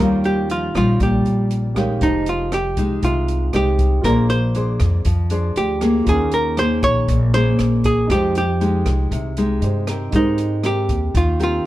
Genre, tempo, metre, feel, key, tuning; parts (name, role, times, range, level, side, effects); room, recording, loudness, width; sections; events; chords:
bossa nova; 118 BPM; 4/4; straight; F minor; A4 = 440 Hz
archtop guitar, miked and amplified; melody; 0.0-11.7 s; Eb4 to Db5; -21 LUFS; right 1 dB
warm cello; second line; 0.0-1.7 s; F3 to Bb3; -26 LUFS; right 2 dB
nylon-string guitar; accompaniment; 0.0-11.7 s; Bb2 to C5; -22 LUFS; left 1 dB
warm grand piano; accompaniment; 0.0-11.7 s; Db4 to F5; -30 LUFS; right 6 dB
upright bass; bass; 0.0-11.6 s; F1 to Ab2; -20 LUFS; equal
open jazz drum kit; drums; 0.2-11.5 s; hi-hat, kick drum, rim click; -25 LUFS; equal
light reverb; dark, warm production; -16 LUFS; side -15 dB against mid
0.0-2.0 A section; 2.0-11.7 B section
0.0 Eb9; 2.0 Fm9; 4.0 Bb9; 6.1 Eb7sus4; 8.1 Fm9; 10.1 Abmaj9